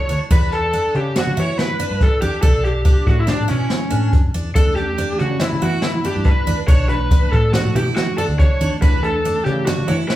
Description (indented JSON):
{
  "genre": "progressive instrumental, band music in an uneven meter",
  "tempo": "141 BPM",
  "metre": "5/4",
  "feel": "straight",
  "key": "unclear",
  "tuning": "A4 = 440 Hz",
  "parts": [
    { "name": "lead guitar through a small cranked amp", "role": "melody", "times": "0.0-10.2 s", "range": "C#4 to C#5", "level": "-21 LUFS", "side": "equal", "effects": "overdrive" },
    { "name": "picked twelve-string acoustic guitar", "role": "arpeggios", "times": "0.1-10.2 s", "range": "D4 to E4", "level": "-26 LUFS", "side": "right 2 dB", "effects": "none" },
    { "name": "woody fretless electric bass", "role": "bass", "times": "0.1-10.1 s", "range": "B1 to E3", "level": "-22 LUFS", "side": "equal", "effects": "none" },
    { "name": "jazz brush drum kit", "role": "drums", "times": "0.1-10.2 s", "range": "hi-hat, kick drum, snare drum", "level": "-17 LUFS", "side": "equal", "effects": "none" },
    { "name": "mellow tine electric piano", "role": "accompaniment", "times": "4.6-10.2 s", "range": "E3 to D5", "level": "-27 LUFS", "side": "right 1 dB", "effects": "medium stereo tremolo" }
  ],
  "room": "moderate large studio reverb, RT60 1.0 s",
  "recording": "band playing live in one room",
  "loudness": "-15 LUFS",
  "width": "side -14 dB against mid",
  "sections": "0.0-10.2 A section",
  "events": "none",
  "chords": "0.3 E7(no3); 2.4 Bm9; 4.6 Em7; 6.7 Bm7; 8.8 E7(no3)",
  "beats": "| 0.30 0.73 1.15 1.58 2.00 | 2.43 2.85 3.28 3.70 4.13 | 4.55 4.98 5.41 5.83 6.26 | 6.68 7.11 7.54 7.96 8.39 | 8.82 9.24 9.67 10.10"
}